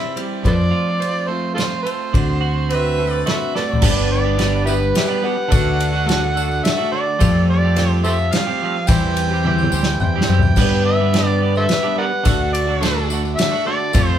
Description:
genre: folk rock and heartland rock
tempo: 107 BPM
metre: 3/4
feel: straight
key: G major from 3.8 s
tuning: A4 = 440 Hz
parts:
  - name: overdriven harmonica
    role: melody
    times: 0.0-14.2 s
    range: E4 to G5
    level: -22 LUFS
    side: right 1 dB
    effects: none
  - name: picked steel-string acoustic guitar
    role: accompaniment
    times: 0.0-14.2 s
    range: D3 to C5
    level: -24 LUFS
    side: left 3 dB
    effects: none
  - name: twelve-string electric guitar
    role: riff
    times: 0.0-14.2 s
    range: F2 to G4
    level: -24 LUFS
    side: right 5 dB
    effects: none
  - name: unplugged drum kit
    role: drums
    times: 0.2-14.1 s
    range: crash cymbal, kick drum, ride cymbal, snare drum, toms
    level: -21 LUFS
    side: equal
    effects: none
  - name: deep dub fingered electric bass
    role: bass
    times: 0.4-14.2 s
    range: G1 to G2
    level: -20 LUFS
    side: equal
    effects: none
  - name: clear harmonica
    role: second line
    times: 2.7-3.8 s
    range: B4 to E5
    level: -30 LUFS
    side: left 5 dB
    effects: none
  - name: hand-pumped harmonium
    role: sustained chords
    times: 3.8-14.2 s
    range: A3 to C5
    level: -32 LUFS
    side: right 1 dB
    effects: none
  - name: tambourine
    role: percussion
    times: 3.8-14.1 s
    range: none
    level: -34 LUFS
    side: left 6 dB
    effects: none
room: moderate studio ambience, RT60 0.5 s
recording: band playing live in one room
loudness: -15 LUFS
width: side -10 dB against mid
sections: 0.0-3.8 A section; 3.8-14.2 B section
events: drum fill 3.6, 9.4-10.6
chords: 0.5 F; 2.1 D7; 3.8 G; 5.5 D; 7.2 Fadd9; 8.9 C/E; 10.6 G; 12.3 D

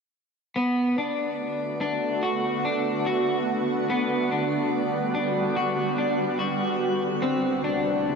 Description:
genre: dream pop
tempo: 72 BPM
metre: 4/4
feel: straight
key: unclear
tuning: A4 = 440 Hz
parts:
  - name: shimmering ambient pad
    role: sustained chords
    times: 1.4-8.2 s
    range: D2 to F#4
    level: -26 LUFS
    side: right 1 dB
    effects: chorus, built-in reverb
  - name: electric guitar at the edge of break-up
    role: arpeggios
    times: 0.6-8.2 s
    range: B3 to F#4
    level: -25 LUFS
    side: equal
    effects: lush chorus, tape echo
room: wet shimmer reverb, RT60 5.4 s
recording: none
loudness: -23 LUFS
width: side -5 dB against mid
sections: 0.6-8.2 A section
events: none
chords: 0.6 Bm7/D; 3.9 Gmaj7/D; 7.2 Am/D

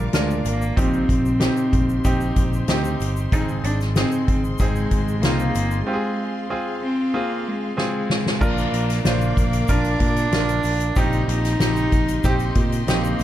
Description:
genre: piano-driven pop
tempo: 94 BPM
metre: 4/4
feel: straight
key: Eb major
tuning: A4 = 440 Hz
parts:
  - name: warm cello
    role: melody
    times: 0.0-13.2 s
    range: G3 to Eb4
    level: -24 LUFS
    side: equal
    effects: none
  - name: bright grand piano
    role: accompaniment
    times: 0.0-13.2 s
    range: Ab2 to C5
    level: -26 LUFS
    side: right 2 dB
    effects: none
  - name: warm studio string section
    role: sustained chords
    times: 0.0-13.2 s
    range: G4 to D6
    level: -35 LUFS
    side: left 2 dB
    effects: none
  - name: picked electric bass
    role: bass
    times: 0.0-13.2 s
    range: G1 to Bb2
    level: -24 LUFS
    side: equal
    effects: none
  - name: soft-mallet drum kit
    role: drums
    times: 0.1-13.2 s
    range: crash cymbal, hi-hat, kick drum, snare drum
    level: -22 LUFS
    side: equal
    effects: none
  - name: tube shaker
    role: percussion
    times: 0.1-13.2 s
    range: none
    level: -44 LUFS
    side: left 8 dB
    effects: none
room: studio ambience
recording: dark, warm production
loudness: -18 LUFS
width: side -12 dB against mid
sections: 0.0-8.4 A section; 8.4-13.2 B section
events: break 5.9-8.4; drum fill 7.8-8.4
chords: 0.0 Bb; 0.8 Eb6/Bb; 3.3 Ab; 5.9 Fm; 8.4 Bb; 11.0 Eb6/Bb

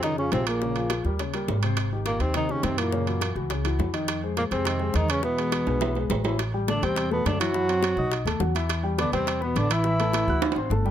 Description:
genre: Afro-Cuban jazz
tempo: 208 BPM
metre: 4/4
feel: straight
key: A minor from 6.4 s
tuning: A4 = 440 Hz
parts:
  - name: breathy tenor saxophone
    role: melody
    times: 0.0-10.6 s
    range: Bb3 to F#4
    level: -27 LUFS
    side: equal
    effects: none
  - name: breathy trombone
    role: second line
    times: 0.0-10.6 s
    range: Bb2 to F#3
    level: -31 LUFS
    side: right 4 dB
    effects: none
  - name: warm grand piano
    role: accompaniment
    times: 0.0-10.9 s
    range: C3 to F#6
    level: -30 LUFS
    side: left 4 dB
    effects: none
  - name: upright bass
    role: bass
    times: 0.0-10.9 s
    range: G1 to Gb2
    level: -28 LUFS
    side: equal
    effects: none
  - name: bongos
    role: percussion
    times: 0.0-10.9 s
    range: none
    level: -34 LUFS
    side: left 8 dB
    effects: none
  - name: timbales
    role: percussion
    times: 0.0-10.6 s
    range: none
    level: -32 LUFS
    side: right 7 dB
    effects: none
room: light reverb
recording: close, detailed microphones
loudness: -23 LUFS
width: side -10 dB against mid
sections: 0.0-6.4 A section; 6.4-10.9 B section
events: drum fill 5.7-6.4, 10.4-10.9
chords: 0.0 Db; 0.6 Bbm7; 1.2 Eb6; 1.8 Abmaj7; 2.9 Gb7; 4.1 Fm7; 5.2 E; 6.4 Am7; 7.5 Cmaj7#11; 8.1 B7; 8.7 Em; 9.8 A5

